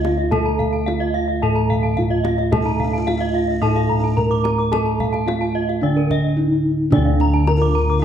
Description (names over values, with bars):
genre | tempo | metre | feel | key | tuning
Balinese gamelan | 109 BPM | 4/4 | straight | D pelog | A4 = 438 Hz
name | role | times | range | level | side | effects
gamelan-type bronze metallophone | melody | 0.0-8.0 s | D4 to Bb4 | -22 LUFS | equal | none
buzzing kalimba | second line | 0.0-8.0 s | D4 to F4 | -31 LUFS | left 1 dB | none
gamelan-type bronze metallophone | accompaniment | 0.0-8.0 s | D3 to A3 | -25 LUFS | right 7 dB | none
gamelan-type bronze metallophone | arpeggios | 0.0-7.9 s | Bb4 to D6 | -26 LUFS | right 4 dB | none
gamelan-type bossed gongs | bass | 0.0-8.0 s | D2 to A4 | -21 LUFS | left 1 dB | none
kendang | percussion | 0.0-7.7 s | none | -26 LUFS | left 1 dB | none
gamelan-type bronze metallophone | arpeggios | 0.2-8.0 s | D5 to D6 | -26 LUFS | left 4 dB | none
room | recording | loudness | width
moderate recital hall reverb, RT60 1.6 s | dark, warm production | -16 LUFS | side -9 dB against mid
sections
0.0-6.9 A section; 6.9-8.0 A section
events
none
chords
none